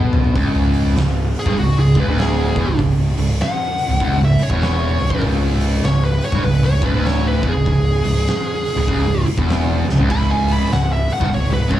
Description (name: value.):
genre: stoner and doom metal.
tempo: 98 BPM.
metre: 4/4.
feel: swing 62% on 8ths.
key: unclear.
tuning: A4 = 440 Hz.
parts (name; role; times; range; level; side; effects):
fuzz guitar; riff; 0.0-11.8 s; C#2 to B2; -19 LUFS; right 1 dB; distortion.
fuzz picked electric bass; bass; 0.0-11.8 s; C#1 to B1; -19 LUFS; equal; overdrive.
oversized low-tuned drum kit; drums; 0.1-11.8 s; crash cymbal, hi-hat, kick drum, snare drum, toms; -21 LUFS; equal; none.
fuzz lead guitar; melody; 1.4-11.8 s; F#4 to B5; -23 LUFS; equal; distortion, tape echo.
room: small room reverb.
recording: small room ambience.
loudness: -15 LUFS.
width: side -12 dB against mid.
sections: 0.4-11.8 A section.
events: drum fill 0.0-0.4, 9.8-10.1; lead electric guitar solo 0.4-11.8.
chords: 0.4 C#m.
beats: | 0.35 0.96 1.57 2.18 | 2.79 3.39 4.00 4.61 | 5.22 5.83 6.44 7.05 | 7.66 8.27 8.88 9.49 | 10.10 10.71 11.32.